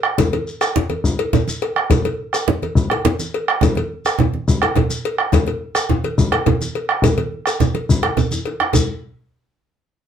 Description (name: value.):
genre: west african traditional, West African drum ensemble.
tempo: 140 BPM (dotted quarters).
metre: 12/8.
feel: straight.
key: none.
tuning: none.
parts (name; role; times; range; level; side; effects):
bombo; percussion; 0.0-8.9 s; none; -18 LUFS; equal; none.
congas; percussion; 0.2-8.9 s; none; -20 LUFS; right 6 dB; none.
cowbell; percussion; 0.2-8.9 s; none; -24 LUFS; left 3 dB; none.
djembe; percussion; 0.2-8.9 s; none; -23 LUFS; left 4 dB; none.
shekere; percussion; 0.2-8.9 s; none; -24 LUFS; left 2 dB; none.
room: wet studio ambience, RT60 0.5 s.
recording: band playing live in one room.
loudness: -16 LUFS.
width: side -8 dB against mid.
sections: 0.0-8.7 A section; 8.7-10.1 B section.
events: drum fill 8.0-8.7.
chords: none.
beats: | 0.18 0.61 1.04 1.47 | 1.90 2.33 2.76 3.19 | 3.62 4.05 4.47 4.90 | 5.33 5.75 6.18 6.61 | 7.03 7.46 7.89 8.31 | 8.74.